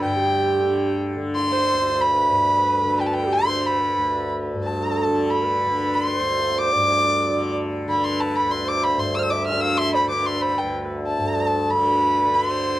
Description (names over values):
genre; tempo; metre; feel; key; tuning
indian classical, Hindustani; 93 BPM; 5/4; straight; D raga bageshri; A4 = 440 Hz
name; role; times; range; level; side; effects
dark violin; melody; 0.0-12.8 s; G5 to F6; -21 LUFS; equal; none
dark sarangi; second line; 0.0-12.8 s; G4 to F5; -26 LUFS; right 4 dB; none
tanpura; drone; 0.0-12.8 s; D2 to D3; -25 LUFS; left 1 dB; none
room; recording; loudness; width
little or no reverb; dry, close 1970s-style studio recording; -19 LUFS; side -14 dB against mid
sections
0.0-12.8 A section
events
speeding up 0.0-12.8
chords
none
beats
| 0.03 0.69 1.35 2.00 2.66 | 3.31 3.96 4.62 5.27 5.92 | 6.57 7.21 7.86 8.50 9.15 | 9.79 10.43 11.07 11.71 12.35